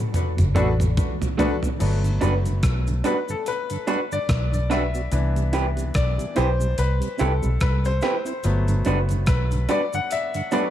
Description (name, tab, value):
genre	lovers rock reggae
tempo	72 BPM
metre	4/4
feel	swing 58% on 16ths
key	G major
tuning	A4 = 440 Hz
part	mellow tonewheel organ	accompaniment	0.0-10.6 s	G2 to F#4	-32 LUFS	right 4 dB	chorus vibrato, slow rotary speaker
part	clean 12-bit digital drum machine	drums	0.1-10.7 s	crash cymbal, hi-hat, kick drum, rim click, toms	-26 LUFS	equal	overdrive, tape echo
part	cabasa	percussion	0.2-10.7 s	none	-44 LUFS	right 1 dB	tape echo
part	vintage muted fingered electric bass	bass	0.4-9.7 s	F#1 to C2	-22 LUFS	equal	none
part	electric guitar through a small old amp	stabs	0.5-10.6 s	A3 to B4	-27 LUFS	right 3 dB	none
part	bright baby grand piano	accompaniment	0.6-10.7 s	E3 to F#5	-27 LUFS	left 4 dB	tape echo
room	little or no reverb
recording	dark, warm production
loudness	-20 LUFS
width	side -11 dB against mid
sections	0.0-1.8 A section; 1.8-10.7 B section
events	drum fill 0.0-1.8; grand piano solo 1.8-10.7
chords	0.0 Bm7; 1.8 Gmaj7; 5.1 Cmaj7; 8.4 Gmaj7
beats	0.14 0.97 | 1.80 2.63 3.46 4.29 | 5.12 5.95 6.79 7.62 | 8.45 9.28 10.11